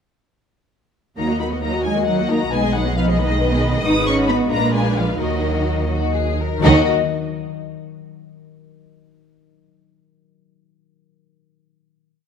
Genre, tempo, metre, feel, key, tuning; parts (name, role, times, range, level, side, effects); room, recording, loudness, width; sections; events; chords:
classical, dramatic, fast romantic movement for symphony orchestra; 82-92 BPM (dotted quarters); 6/8; rubato; Eb minor; A4 = 440 Hz
dark studio violin section; melody; 1.2-6.9 s; Eb5 to Eb6; -26 LUFS; left 3 dB
warm symphonic violin section; second line; 1.2-6.9 s; Eb4 to Eb5; -26 LUFS; left 3 dB
warm symphonic viola section; accompaniment; 1.2-6.9 s; Gb3 to Gb4; -23 LUFS; right 1 dB
concert harp; arpeggios; 1.2-8.1 s; Ab2 to Eb5; -25 LUFS; left 14 dB
dark symphonic cello section; bass; 1.2-6.9 s; Eb3 to Eb4; -22 LUFS; right 2 dB
rich symphonic double bass section; bass; 1.2-6.9 s; Ab1 to Eb2; -22 LUFS; right 3 dB
moderate scoring stage reverb, RT60 2.1 s; close, detailed microphones; -16 LUFS; side -7 dB against mid
1.2-6.6 A section; 6.6-8.1 final chord
1.2 Ebm; 2.5 Abm/Cb; 3.9 Abm7; 4.5 Bb7b9; 5.2 Ebm